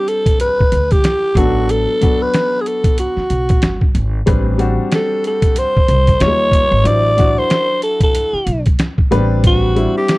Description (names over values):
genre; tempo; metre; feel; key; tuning
hip hop, jazz-hop; 93 BPM; 4/4; swing 58% on 16ths; A dorian; A4 = 440 Hz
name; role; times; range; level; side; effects
growling alto saxophone; melody; 0.0-10.2 s; F#4 to D5; -16 LUFS; equal; none
warm upright piano; accompaniment; 0.0-10.2 s; F#3 to C#5; -20 LUFS; left 2 dB; none
trip hop sampler-style drum kit; drums; 0.1-10.2 s; hi-hat, kick drum, snare drum; -15 LUFS; equal; none
upright bass; bass; 0.6-9.9 s; G1 to D#2; -17 LUFS; equal; none
room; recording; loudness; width
little or no reverb; dry, close 1970s-style studio recording; -12 LUFS; side -20 dB against mid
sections
0.0-10.2 A section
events
none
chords
0.0 Am11; 1.4 Bm7/A; 4.3 Am11; 6.2 D#9; 6.9 D9/A; 9.1 Am11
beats
0.40 1.05 | 1.69 2.34 2.98 3.63 | 4.27 4.92 5.56 6.21 | 6.85 7.50 8.14 8.79 | 9.43 10.08